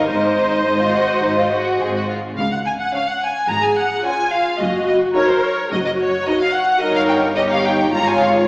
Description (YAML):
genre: quick classical-period movement for string orchestra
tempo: 108 BPM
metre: 4/4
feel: straight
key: Db major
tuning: A4 = 440 Hz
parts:
  - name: rich symphonic violin section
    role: melody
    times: 0.0-8.5 s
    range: C5 to Bb5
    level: -19 LUFS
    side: equal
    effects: none
  - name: warm symphonic violin section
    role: second line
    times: 0.0-8.5 s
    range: Db4 to Db5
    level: -20 LUFS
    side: equal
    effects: none
  - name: rich symphonic viola section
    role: accompaniment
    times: 0.0-8.5 s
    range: F4 to C5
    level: -19 LUFS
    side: equal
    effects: none
  - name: rich symphonic cello section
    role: bass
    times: 0.0-8.5 s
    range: Gb2 to Db3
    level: -29 LUFS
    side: equal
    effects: none
  - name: rich symphonic double bass section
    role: bass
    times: 0.0-8.5 s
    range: Gb1 to Db2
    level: -27 LUFS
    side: equal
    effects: none
room: wet concert hall reverb, RT60 2.0 s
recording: heard from further back in the room, small speaker sound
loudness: -15 LUFS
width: side -26 dB against mid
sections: 0.0-8.5 A section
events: none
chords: 0.1 Ab; 2.4 Db; 4.6 Ebm/Gb; 6.8 Eb7/G; 7.9 Db/Ab